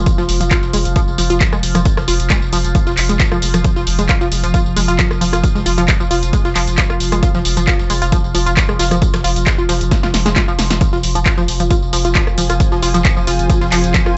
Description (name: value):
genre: driving peak-time techno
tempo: 134 BPM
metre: 4/4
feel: straight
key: F minor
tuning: A4 = 440 Hz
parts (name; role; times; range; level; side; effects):
- saturated sub bass; bass; 0.0-14.2 s; F1; -22 LUFS; equal; overdrive, sidechain pumping, low-pass filter
- overtone-sweeping drone; drone; 0.0-14.2 s; F3 to F4; -26 LUFS; equal; chorus, built-in reverb, sidechain pumping
- breakbeat sampler-style drum kit; drums; 0.1-14.1 s; hi-hat, snare drum; -35 LUFS; equal; none
- electronic kick drum; drums; 0.1-14.0 s; none; -18 LUFS; equal; none
- punchy analog drum machine; drums; 0.1-14.1 s; handclaps, hi-hat, rim click, snare drum, tambourine; -22 LUFS; equal; none
- tight sequenced synth; riff; 0.2-14.1 s; F3 to F4; -22 LUFS; equal; chorus, tube saturation, sidechain pumping, tape echo
- granular cloud pad; texture; 12.1-14.2 s; F4 to Ab5; -28 LUFS; equal; built-in reverb, sidechain pumping
room: light reverb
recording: nothing above 7.9 kHz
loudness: -15 LUFS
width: mono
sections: 0.0-14.2 A section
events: drum fill 9.9-10.8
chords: 0.0 Fm